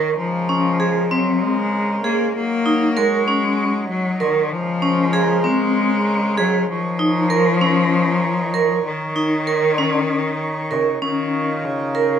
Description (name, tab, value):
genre	contemporary instrumental, chamber music in an uneven meter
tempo	194 BPM (eighths)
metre	7/8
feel	straight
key	Eb dorian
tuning	A4 = 440 Hz
part	bright cello	second line	0.0-12.2 s	Db3 to Bb3	-20 LUFS	left 3 dB	none
part	hand-pumped harmonium	sustained chords	0.0-12.2 s	Db3 to Db5	-25 LUFS	right 2 dB	none
part	vibraphone with hard mallets	arpeggios	0.0-12.2 s	C4 to Bb4	-20 LUFS	right 2 dB	none
room	moderate recital hall reverb, RT60 1.6 s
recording	close, detailed microphones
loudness	-16 LUFS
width	side -8 dB against mid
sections	0.0-11.0 A section; 11.0-12.2 B section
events	none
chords	0.2 Bbm9; 2.4 Ebm7; 4.5 Bbm9; 6.7 Eb5; 11.0 Eb7sus2